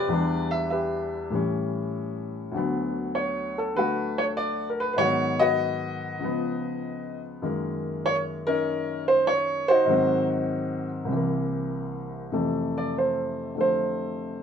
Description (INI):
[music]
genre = solo jazz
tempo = 98 BPM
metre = 4/4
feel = swing 69% on 8ths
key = unclear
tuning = A4 = 445 Hz
[part]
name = warm upright piano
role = solo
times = 0.0-14.4 s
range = C2 to E5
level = -24 LUFS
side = equal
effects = none
[sound]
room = moderate studio reverb, RT60 0.9 s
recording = band playing live in one room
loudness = -24 LUFS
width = side -7 dB against mid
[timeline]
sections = 0.0-12.3 A section; 12.3-14.4 B section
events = upright piano solo 12.3-14.4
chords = 0.1 Em7; 1.3 A7; 2.5 D6; 5.0 Abm7; 6.2 Db7; 7.4 Gb69; 9.9 Ab7; 11.1 C7; 12.3 Fmaj7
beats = | 0.11 0.72 1.33 1.94 | 2.55 3.15 3.77 4.37 | 4.98 5.59 6.21 6.82 | 7.43 8.04 8.65 9.26 | 9.88 10.49 11.10 11.71 | 12.33 12.94 13.56 14.17